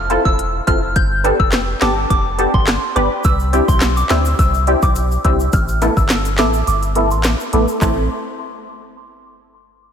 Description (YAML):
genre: dancehall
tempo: 105 BPM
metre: 4/4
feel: straight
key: A minor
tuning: A4 = 440 Hz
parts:
  - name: punchy sub bass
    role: bass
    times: 0.0-8.1 s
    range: E1 to D2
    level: -19 LUFS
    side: equal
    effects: none
  - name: wavetable chord stab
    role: accompaniment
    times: 0.1-8.1 s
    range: A3 to B4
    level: -19 LUFS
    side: equal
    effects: lush chorus, sidechain pumping, low-pass filter
  - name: afro-pop drum kit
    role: drums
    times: 0.1-8.0 s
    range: handclaps, hi-hat, kick drum, rim click, snare drum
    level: -18 LUFS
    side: equal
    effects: none
  - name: soft synth bell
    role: melody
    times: 0.3-8.1 s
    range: C6 to G6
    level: -22 LUFS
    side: equal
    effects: chorus, phaser, low-pass filter, ping-pong delay
  - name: tube shaker and timbales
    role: percussion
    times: 3.2-8.1 s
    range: none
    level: -32 LUFS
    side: left 4 dB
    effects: none
room: moderate lush hall reverb, RT60 2.4 s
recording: dreamy mix soaked in reverb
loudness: -13 LUFS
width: side -8 dB against mid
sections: 0.0-7.8 A section; 7.8-9.9 B section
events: filter sweep 0.0-7.8; kick muted 6.7-7.8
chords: 0.0 Fmaj7; 1.0 Gadd9; 3.2 Cadd9; 5.5 Asus2; 7.8 Am